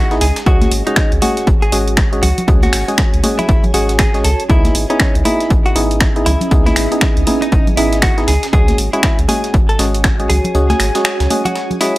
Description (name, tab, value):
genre	deep house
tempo	119 BPM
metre	4/4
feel	swing 60% on 16ths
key	unclear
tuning	A4 = 439 Hz
part	direct-recorded clean electric guitar	melody	0.0-12.0 s	C#4 to A4	-21 LUFS	equal	tape echo
part	percussive organ stab	stabs	0.0-12.0 s	G#3 to G#4	-19 LUFS	equal	chorus, vintage 12-bit sampler grit, sidechain pumping
part	round analog bass	bass	0.0-11.3 s	G#1 to C#2	-18 LUFS	equal	sidechain pumping
part	granular cloud pad	texture	0.1-12.0 s	C#4 to G#5	-25 LUFS	right 2 dB	built-in reverb, sidechain pumping
part	breakbeat sampler-style drum kit	drums	0.1-12.0 s	hi-hat, snare drum	-29 LUFS	equal	none
part	punchy analog drum machine	drums	0.1-12.0 s	finger snaps, hi-hat	-20 LUFS	equal	overdrive
part	electronic kick drum	drums	0.5-10.2 s	none	-14 LUFS	equal	overdrive
part	congas	percussion	0.6-11.8 s	none	-22 LUFS	left 1 dB	none
room	little or no reverb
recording	dry, gritty hardware recording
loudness	-11 LUFS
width	side -18 dB against mid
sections	0.0-12.0 A section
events	kick drops out 10.5-12.0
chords	0.5 F#sus2; 4.5 C#m9; 8.5 F#sus2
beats	| 0.46 0.97 1.47 1.98 | 2.48 2.98 3.49 3.99 | 4.50 5.00 5.50 6.01 | 6.51 7.02 7.52 8.03 | 8.53 9.04 9.54 10.04 | 10.55 11.05 11.56